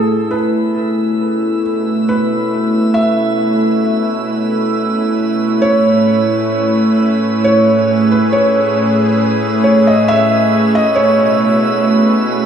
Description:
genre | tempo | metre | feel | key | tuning
ambient | 68 BPM | 3/4 | straight | unclear | A4 = 441 Hz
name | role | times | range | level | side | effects
felt-muted upright piano | melody | 0.0-12.5 s | A4 to E5 | -16 LUFS | right 1 dB | analog delay
warm analog pad | sustained chords | 0.0-12.5 s | A2 to G#5 | -16 LUFS | equal | chorus
analog drone | drone | 0.0-12.5 s | A3 to E4 | -16 LUFS | right 1 dB | chorus
drifting glass-harmonics texture | texture | 0.0-12.5 s | E6 | -26 LUFS | right 4 dB | chorus, built-in reverb
room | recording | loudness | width
wet plate reverb, RT60 2.7 s | echo-heavy mix, studio reverb | -11 LUFS | side -8 dB against mid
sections
0.0-12.5 A section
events
fade-in on analog synth pad 0.0-12.5; fade-in on synth texture 0.0-12.5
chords
0.3 B7sus4; 5.7 Amaj7; 11.0 B7sus4

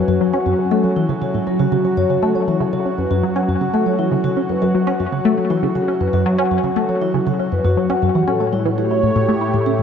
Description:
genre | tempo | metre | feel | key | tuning
ambient, sequencer-driven space music | 119 BPM | 4/4 | straight | F# minor | A4 = 440 Hz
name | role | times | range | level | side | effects
sweeping resonant pad | sustained chords | 0.0-9.8 s | A2 to G#5 | -20 LUFS | right 2 dB | chorus, shimmer reverb
vibraphone with soft mallets | arpeggios | 0.0-9.8 s | F#3 to F#5 | -22 LUFS | left 5 dB | auto-pan, ping-pong delay, shimmer reverb
tight sequenced synth | riff | 0.0-9.8 s | F#2 to E4 | -19 LUFS | left 1 dB | chorus, phaser, ping-pong delay
room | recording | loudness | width
wet spring reverb, RT60 2.3 s | echo-heavy mix | -15 LUFS | side -7 dB against mid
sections
0.0-9.8 A section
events
none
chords
0.0 F#m7; 8.2 A7

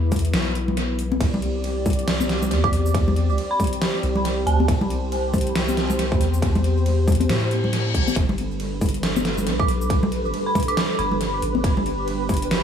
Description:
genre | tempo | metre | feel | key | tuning
deep dubstep | 138 BPM | 4/4 | swing 60% on 16ths, half-time | unclear | A4 = 439 Hz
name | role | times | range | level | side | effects
dark analog pad | sustained chords | 0.0-12.6 s | G3 to D5 | -27 LUFS | right 1 dB | chorus
soft dub sub bass | bass | 0.0-12.6 s | G1 to A2 | -24 LUFS | equal | none
dubstep drum kit | drums | 0.1-12.6 s | hi-hat, ride cymbal, shaker, snare drum | -28 LUFS | equal | overdrive, tape echo
electronic kick drum | drums | 0.1-12.4 s | none | -23 LUFS | equal | overdrive
congas | percussion | 0.1-12.4 s | none | -27 LUFS | left 3 dB | dub echo
dark detuned synth bell | melody | 2.6-4.8, 9.6-11.4 s | A5 to D6 | -28 LUFS | right 2 dB | chorus, tremolo, dub echo
reverse cymbal | sound effects | 7.4-8.2 s | none | -29 LUFS | left 6 dB | none
flickering grainy texture | texture | 8.5-12.6 s | B4 | -30 LUFS | right 2 dB | built-in reverb
room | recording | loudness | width
light reverb | echo-heavy mix, small room ambience | -19 LUFS | side -8 dB against mid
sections
0.0-12.6 A section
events
reverse cymbal 7.4-8.2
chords
0.0 N.C.; 1.2 C; 8.2 Gadd9

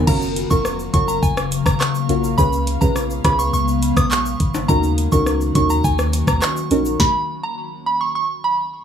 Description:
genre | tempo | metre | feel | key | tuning
dancehall | 104 BPM | 4/4 | straight | Eb minor | A4 = 435 Hz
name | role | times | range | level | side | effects
ethereal airy pad | sustained chords | 0.0-7.0 s | Db3 to F5 | -25 LUFS | left 3 dB | ensemble chorus, built-in reverb, sidechain pumping
punchy sub bass | bass | 0.0-7.0 s | F1 to Eb2 | -23 LUFS | left 1 dB | none
soft synth bell | melody | 0.1-8.5 s | Ab5 to Eb6 | -22 LUFS | right 2 dB | chorus, tape echo
deep mellow chord stab | accompaniment | 0.1-6.9 s | Db4 to Cb5 | -22 LUFS | right 1 dB | chorus, sidechain pumping
afro-pop drum kit | drums | 0.1-7.1 s | crash cymbal, handclaps, hi-hat, kick drum, rim click, shaker, snare drum | -20 LUFS | equal | none
tube shaker and timbales | percussion | 0.1-7.0 s | none | -33 LUFS | left 6 dB | none
room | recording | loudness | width
light reverb | none | -16 LUFS | side -8 dB against mid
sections
0.0-8.8 A section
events
stop 7.0-8.8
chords
0.1 Gbmaj7; 2.4 Db7; 4.7 Ebm7; 7.0 N.C.

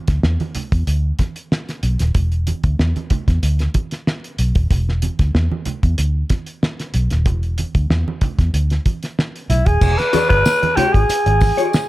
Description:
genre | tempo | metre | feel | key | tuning
funk | 94 BPM | 4/4 | straight | E mixolydian | A4 = 439 Hz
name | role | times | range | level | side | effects
vintage muted fingered electric bass | bass | 0.1-11.5 s | D#1 to E2 | -17 LUFS | equal | none
cloth-damped thuddy drum kit | drums | 0.1-11.9 s | crash cymbal, hi-hat, kick drum, snare drum | -19 LUFS | equal | none
congas | percussion | 0.4-11.6 s | none | -27 LUFS | right 4 dB | none
growling alto saxophone | melody | 9.5-11.9 s | E4 to B4 | -16 LUFS | equal | none
tambourine | percussion | 9.8-11.9 s | none | -35 LUFS | left 5 dB | none
mellow electric guitar | accompaniment | 10.1-11.8 s | F#4 to D5 | -21 LUFS | left 7 dB | analog chorus
room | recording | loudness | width
little or no reverb | none | -16 LUFS | side -17 dB against mid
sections
0.0-9.8 A section; 9.8-11.9 B section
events
none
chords
0.0 E5; 9.8 E9 (rootless)

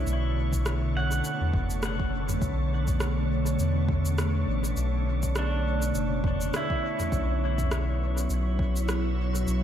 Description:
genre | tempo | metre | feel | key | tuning
ambient dub | 102 BPM | 4/4 | swing 57% on 16ths | B minor | A4 = 440 Hz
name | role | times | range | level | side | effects
soft additive organ-like pad | sustained chords | 0.0-9.6 s | B2 to C#5 | -30 LUFS | equal | ensemble chorus, built-in reverb
pedal steel guitar | arpeggios | 0.0-9.2 s | D4 to F#5 | -34 LUFS | right 2 dB | ping-pong delay
soft dub sub bass | bass | 0.0-9.6 s | F#1 to E2 | -27 LUFS | equal | tube saturation
wind-like tuned noise texture | texture | 0.0-9.6 s | C#4 to C#5 | -38 LUFS | equal | built-in reverb
organic electronic drum kit | drums | 0.1-9.6 s | cabasa, rim click, toms | -35 LUFS | equal | dub echo
electronic kick drum | drums | 0.5-8.7 s | none | -31 LUFS | equal | none
room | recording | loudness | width
moderate lush hall reverb, RT60 1.8 s | dreamy mix soaked in reverb | -25 LUFS | side -10 dB against mid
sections
0.0-9.6 A section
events
none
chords
0.0 Bm9; 7.1 A6 (rootless)

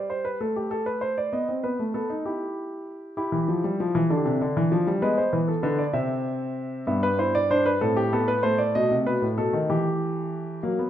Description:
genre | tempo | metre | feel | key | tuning
classical, baroque-style 3-part fugue for grand piano | 65 BPM (dotted quarters) | 6/8 | straight | unclear | A4 = 440 Hz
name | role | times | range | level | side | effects
warm concert grand piano | solo | 0.0-10.9 s | G2 to E5 | -23 LUFS | equal | none
room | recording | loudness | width
moderate recital hall reverb, RT60 1.5 s | none | -22 LUFS | side -11 dB against mid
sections
0.0-10.6 A section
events
none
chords
0.4 Am11; 1.3 B7; 2.2 Em; 4.1 C69; 5.0 E7; 5.9 C; 6.9 Em/G; 7.8 Am11; 8.7 B7; 9.7 Em

